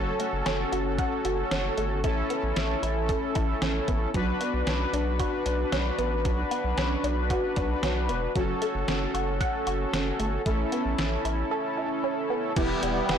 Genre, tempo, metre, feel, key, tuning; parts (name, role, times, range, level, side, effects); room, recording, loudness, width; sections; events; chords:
synth-pop; 114 BPM; 4/4; straight; B minor; A4 = 440 Hz
analog synth brass; accompaniment; 0.0-13.2 s; B3 to B4; -28 LUFS; left 1 dB; chorus
resonant blip pluck; arpeggios; 0.0-13.2 s; E3 to F#5; -32 LUFS; right 1 dB; phaser, tape echo
round analog bass; bass; 0.0-13.2 s; E1 to B1; -30 LUFS; equal
detuned 8-bit digital drum machine; drums; 0.2-13.2 s; crash cymbal, hi-hat, kick drum, snare drum; -31 LUFS; equal
lush unison pad; sustained chords; 12.6-13.2 s; E3 to B3; -29 LUFS; right 1 dB; chorus, phaser
light reverb, digital ambience; blown-out, overdriven recording, overdrive; -25 LUFS; side -8 dB against mid
0.0-12.6 A section
0.0 F#m; 2.0 Aadd9; 4.1 Bmadd9; 8.4 F#m; 10.5 Aadd9; 12.6 Em